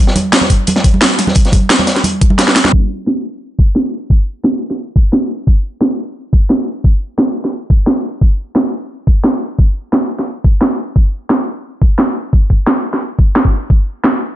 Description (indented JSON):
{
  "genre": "drum and bass",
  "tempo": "175 BPM",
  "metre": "4/4",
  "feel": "swing 53% on 16ths",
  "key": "none",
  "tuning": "none",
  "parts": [
    { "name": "crunchy breakbeat drum kit", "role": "drums", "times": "0.1-2.7 s", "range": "hi-hat, snare drum", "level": "-18 LUFS", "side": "equal", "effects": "high-pass filter on hats, high-pass filter on snare, high-pass filter on room" },
    { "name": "drum and bass drum kit", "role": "drums", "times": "0.2-14.1 s", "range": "hi-hat, snare drum", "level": "-13 LUFS", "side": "equal", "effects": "overdrive" },
    { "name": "congas", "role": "percussion", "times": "0.2-2.7 s", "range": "none", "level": "-17 LUFS", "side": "right 2 dB", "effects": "none" },
    { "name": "electronic kick drum", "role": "drums", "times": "0.5-13.8 s", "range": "none", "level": "-10 LUFS", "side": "equal", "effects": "none" }
  ],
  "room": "studio reverb",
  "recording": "low-pass filter, nothing above 10.3 kHz",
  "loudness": "-11 LUFS",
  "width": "side -13 dB against mid",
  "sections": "0.0-2.7 A section; 2.7-14.4 B section",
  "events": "drum fill 2.4-2.7; band accent 2.6; filter sweep 2.7-14.4",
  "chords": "none"
}